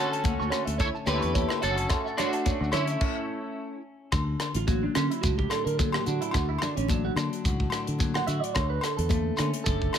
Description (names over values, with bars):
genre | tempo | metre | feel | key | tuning
highlife guitar band | 108 BPM | 4/4 | swing 55% on 16ths | D major | A4 = 440 Hz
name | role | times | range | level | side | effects
electric guitar at the edge of break-up | melody | 0.0-3.8 s | C#4 to C#5 | -30 LUFS | equal | ensemble chorus
breathy trumpet | second line | 0.0-3.8 s | A3 to E4 | -38 LUFS | left 5 dB | none
clean electric guitar | accompaniment | 0.0-10.0 s | A2 to A4 | -36 LUFS | left 5 dB | spring reverb
electric guitar at the edge of break-up | arpeggios | 0.0-10.0 s | C#4 to C#6 | -32 LUFS | right 10 dB | tape echo
tight funk drum kit | drums | 0.1-10.0 s | crash cymbal, hi-hat, kick drum, rim click | -30 LUFS | equal | none
fingered electric bass | bass | 0.2-9.9 s | F#1 to D3 | -30 LUFS | equal | none
congas | percussion | 0.2-9.7 s | none | -36 LUFS | left 10 dB | none
shekere | percussion | 0.2-10.0 s | none | -34 LUFS | right 1 dB | none
agogo bells | percussion | 0.5-10.0 s | none | -36 LUFS | left 4 dB | none
room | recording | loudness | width
studio ambience | none | -25 LUFS | side -8 dB against mid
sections
0.0-4.1 A section; 4.1-10.0 B section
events
stop 3.0-4.1; clean electric guitar solo 4.1-10.0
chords
0.0 A; 4.1 D; 8.6 A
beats
0.26 0.81 1.36 | 1.92 2.47 3.02 3.57 | 4.13 4.68 5.23 5.79 | 6.34 6.89 7.45 8.00 | 8.55 9.11 9.66